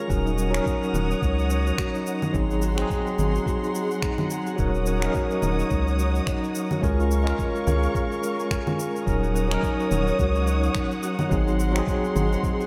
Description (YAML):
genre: sunset chillout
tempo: 107 BPM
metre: 4/4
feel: swing 58% on 16ths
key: Eb dorian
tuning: A4 = 441 Hz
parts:
  - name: bright tine electric piano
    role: accompaniment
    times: 0.0-12.7 s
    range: Gb3 to Bb4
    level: -29 LUFS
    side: equal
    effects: delay
  - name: dark chamber string section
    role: sustained chords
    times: 0.0-12.7 s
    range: Ab4 to Eb6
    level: -34 LUFS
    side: equal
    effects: none
  - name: concert harp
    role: arpeggios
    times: 0.0-12.7 s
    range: C4 to Db5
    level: -35 LUFS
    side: equal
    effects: delay
  - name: drifting glass-harmonics texture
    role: texture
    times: 0.0-12.7 s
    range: Bb5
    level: -43 LUFS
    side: equal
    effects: chorus, built-in reverb
  - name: round analog bass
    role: bass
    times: 0.1-12.4 s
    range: Eb1 to Db2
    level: -26 LUFS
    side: equal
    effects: none
  - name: electronic kick drum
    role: drums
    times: 0.1-12.6 s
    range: none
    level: -30 LUFS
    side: equal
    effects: none
  - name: electronic shaker, finger snaps and congas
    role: drums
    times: 0.1-12.7 s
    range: none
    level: -35 LUFS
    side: equal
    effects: none
room: moderate lush hall reverb, RT60 1.9 s, digital ambience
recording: dreamy mix soaked in reverb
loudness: -24 LUFS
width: mono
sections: 0.0-12.7 A section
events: none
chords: 0.1 Ebm7; 2.3 Ab7; 4.6 Ebm7; 6.8 Db6; 9.1 Ebm7; 11.3 Ab7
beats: | 0.10 0.66 1.22 1.78 | 2.34 2.90 3.46 4.02 | 4.58 5.15 5.71 6.27 | 6.83 7.39 7.95 8.51 | 9.07 9.63 10.19 10.75 | 11.31 11.88 12.44